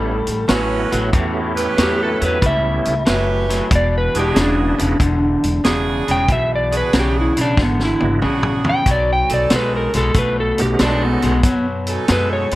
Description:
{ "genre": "electric blues shuffle", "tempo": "93 BPM", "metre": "4/4", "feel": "swing 68% on 8ths", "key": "E mixolydian", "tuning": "A4 = 440 Hz", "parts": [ { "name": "electric slide guitar", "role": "melody", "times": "0.0-12.5 s", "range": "B3 to G5", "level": "-19 LUFS", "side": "equal", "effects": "none" }, { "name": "bright tonewheel organ", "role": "accompaniment", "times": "0.0-11.4 s", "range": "G#3 to G4", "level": "-24 LUFS", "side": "right 4 dB", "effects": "slow rotary speaker, overdrive, chorus vibrato" }, { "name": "electric guitar at the edge of break-up", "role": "riff", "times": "0.0-12.6 s", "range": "E2 to A3", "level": "-22 LUFS", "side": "left 2 dB", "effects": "none" }, { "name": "upright bass", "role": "bass", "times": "0.0-12.6 s", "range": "E1 to F#2", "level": "-22 LUFS", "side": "equal", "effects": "none" }, { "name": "vintage drum kit", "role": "drums", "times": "0.3-12.6 s", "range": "hi-hat, kick drum, snare drum, toms", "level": "-20 LUFS", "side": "equal", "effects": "none" }, { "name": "edgy saxophone section", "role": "stabs", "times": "0.5-12.6 s", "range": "C#4 to B4", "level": "-24 LUFS", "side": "right 4 dB", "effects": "none" } ], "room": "light reverb", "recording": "none", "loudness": "-15 LUFS", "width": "side -16 dB against mid", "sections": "0.0-12.6 A section", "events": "electric slide guitar solo 0.0-12.6; drum fill 7.6-8.9", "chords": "0.0 A9; 3.7 E9; 8.9 B9" }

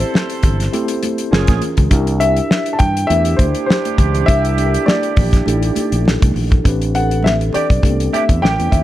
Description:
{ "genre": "lush 1970s-style soul", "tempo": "101 BPM", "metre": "4/4", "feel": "swing 54% on 16ths", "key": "unclear", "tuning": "A4 = 442 Hz", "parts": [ { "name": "dark grand piano", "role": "melody", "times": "0.0-8.8 s", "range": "C5 to A5", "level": "-20 LUFS", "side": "left 2 dB", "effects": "none" }, { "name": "tine electric piano", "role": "accompaniment", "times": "0.0-8.8 s", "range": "B3 to C5", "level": "-22 LUFS", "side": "left 1 dB", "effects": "overdrive, fast stereo tremolo" }, { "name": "mellow horn section", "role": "stabs", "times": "0.0-8.8 s", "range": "C4 to A4", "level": "-24 LUFS", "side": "right 12 dB", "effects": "none" }, { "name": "fingered electric bass", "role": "bass", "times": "0.0-8.8 s", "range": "F#1 to G2", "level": "-18 LUFS", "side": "equal", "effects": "none" }, { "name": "damped 70s drum kit", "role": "drums", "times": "0.0-8.8 s", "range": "hi-hat, kick drum, snare drum", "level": "-16 LUFS", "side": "equal", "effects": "none" }, { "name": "congas", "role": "percussion", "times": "0.1-8.8 s", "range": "none", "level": "-26 LUFS", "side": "right 5 dB", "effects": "none" }, { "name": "vibraphone with medium hard mallets", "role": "texture", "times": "2.5-8.3 s", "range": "A4 to D5", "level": "-30 LUFS", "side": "left 2 dB", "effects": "none" } ], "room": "small room reverb", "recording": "none", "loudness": "-13 LUFS", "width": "side -14 dB against mid", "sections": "0.0-6.7 A section; 6.7-8.8 B section", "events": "none", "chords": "0.0 Am7; 1.3 F#maj9; 1.9 C9; 6.7 Am11" }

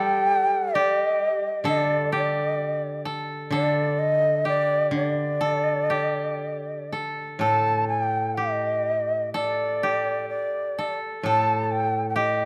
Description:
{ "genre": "japanese traditional, Japanese chamber music", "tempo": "57-67 BPM", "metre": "4/4", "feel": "rubato", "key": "unclear", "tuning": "A4 = 439 Hz", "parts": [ { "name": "breathy mellow long shakuhachi", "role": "melody", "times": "0.0-12.5 s", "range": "D5 to A5", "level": "-26 LUFS", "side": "equal", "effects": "none" }, { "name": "koto", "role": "second line", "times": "0.0-12.5 s", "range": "G4 to A4", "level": "-31 LUFS", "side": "equal", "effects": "none" }, { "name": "koto", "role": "accompaniment", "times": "0.0-12.5 s", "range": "A2 to G3", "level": "-32 LUFS", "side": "equal", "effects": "none" } ], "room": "light reverb", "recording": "close, detailed microphones", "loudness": "-24 LUFS", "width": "mono", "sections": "0.0-12.5 A section", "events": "none", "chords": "none" }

